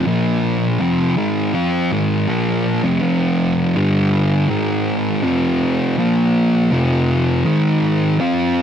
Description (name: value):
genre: metal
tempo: 81 BPM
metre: 4/4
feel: straight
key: unclear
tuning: A4 = 440 Hz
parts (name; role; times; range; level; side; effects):
- thick fuzz guitar; solo; 0.0-8.6 s; F2 to F4; -15 LUFS; equal; distortion
room: light reverb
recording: dry, close 1970s-style studio recording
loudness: -15 LUFS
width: side -9 dB against mid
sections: 0.0-8.6 A section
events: none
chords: 0.1 Bb5; 0.8 F5; 3.8 G5; 4.5 Ab5; 5.2 F5; 6.0 Bb5; 6.7 F5; 7.5 Ab5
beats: | 0.08 0.82 1.55 2.29 | 3.03 3.77 4.51 5.25 | 5.98 6.72 7.46 8.20